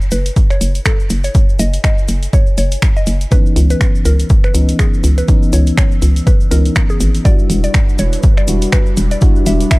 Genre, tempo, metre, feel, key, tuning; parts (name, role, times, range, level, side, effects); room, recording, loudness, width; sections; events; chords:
deep house; 122 BPM; 4/4; swing 57% on 16ths; A4 = 440 Hz
cabasa; percussion; 0.0-9.8 s; -30 LUFS; left 3 dB
warbly tape-like pad; texture; 0.7-9.8 s; G3 to E6; -32 LUFS; left 2 dB
mallet-like synth pluck; melody; 0.1-9.8 s; G#4 to E5; -24 LUFS; equal; chorus, tape echo
hollow knocking FM bass; bass; 0.1-9.7 s; E1 to C#2; -13 LUFS; equal; sidechain pumping
punchy analog drum machine; drums; 0.1-9.8 s; finger snaps, hi-hat; -23 LUFS; right 1 dB
electronic kick drum; drums; 0.4-9.8 s; -12 LUFS; equal
mellow FM electric piano; stabs; 3.3-9.8 s; E3 to F#4; -20 LUFS; left 1 dB; chorus, sidechain pumping
airy breathy pad; sustained chords; 7.4-9.8 s; G3 to B4; -27 LUFS; equal; chorus, phaser, sidechain pumping
little or no reverb; dark, warm production; -10 LUFS; side -22 dB against mid
0.0-9.8 A section
0.0 F#m9; 3.3 C#m9; 7.3 Em9